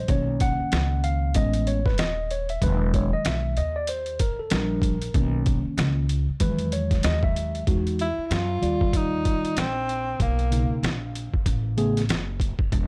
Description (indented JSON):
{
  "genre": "hip hop, jazz-hop",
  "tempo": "95 BPM",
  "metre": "4/4",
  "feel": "swing 60% on 16ths",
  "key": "unclear",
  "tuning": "A4 = 442 Hz",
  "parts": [
    { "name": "mellow tine electric piano", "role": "accompaniment", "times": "0.0-12.0 s", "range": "B2 to F#5", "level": "-29 LUFS", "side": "equal", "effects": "none" },
    { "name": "upright bass", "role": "bass", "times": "0.0-12.9 s", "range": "D#1 to F#2", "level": "-29 LUFS", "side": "equal", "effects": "none" },
    { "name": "trip hop sampler-style drum kit", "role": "drums", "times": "0.1-12.9 s", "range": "hi-hat, kick drum, snare drum", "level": "-28 LUFS", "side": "equal", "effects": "none" },
    { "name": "breathy tenor saxophone", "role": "melody", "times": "8.0-10.8 s", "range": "A#3 to F4", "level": "-30 LUFS", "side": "equal", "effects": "analog delay" }
  ],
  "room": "studio reverb",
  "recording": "dry, gritty hardware recording",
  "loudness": "-24 LUFS",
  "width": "mono",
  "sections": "0.0-7.7 A section; 7.7-12.9 B section",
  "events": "tine electric piano solo 0.0-7.7",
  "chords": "0.1 Bmaj9; 1.4 Amaj9; 2.6 Emaj9; 3.6 D#maj9; 5.1 Bmaj9; 6.4 Emaj9; 8.6 D#maj9; 10.2 Bmaj9; 11.5 Amaj9",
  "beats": "| 0.09 0.72 1.35 1.99 | 2.62 3.25 3.88 4.51 | 5.14 5.78 6.41 7.04 | 7.67 8.30 8.93 9.56 | 10.20 10.83 11.46 12.09 | 12.72"
}